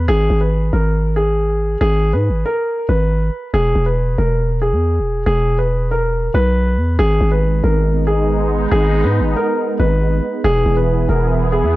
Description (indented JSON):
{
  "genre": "hip hop, drill",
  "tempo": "139 BPM",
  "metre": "4/4",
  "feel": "half-time",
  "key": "G# minor",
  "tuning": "A4 = 440 Hz",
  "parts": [
    { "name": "dark concert grand piano", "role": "melody", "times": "0.0-11.8 s", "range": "G#4 to B4", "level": "-19 LUFS", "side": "equal", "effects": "low-pass filter, analog delay" },
    { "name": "growling 808-style bass", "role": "bass", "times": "0.0-11.8 s", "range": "E1 to G#2", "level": "-16 LUFS", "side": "equal", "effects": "none" },
    { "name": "sweeping resonant pad", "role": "sustained chords", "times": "7.0-11.8 s", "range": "E3 to G#4", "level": "-21 LUFS", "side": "right 2 dB", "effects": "chorus" }
  ],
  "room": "little or no reverb",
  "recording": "dry, gritty hardware recording, transformer saturation",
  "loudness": "-14 LUFS",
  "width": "side -17 dB against mid",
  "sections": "0.0-7.0 A section; 7.0-11.8 B section",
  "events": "none",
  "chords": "0.1 G#m; 3.5 E; 7.0 G#m; 10.4 E"
}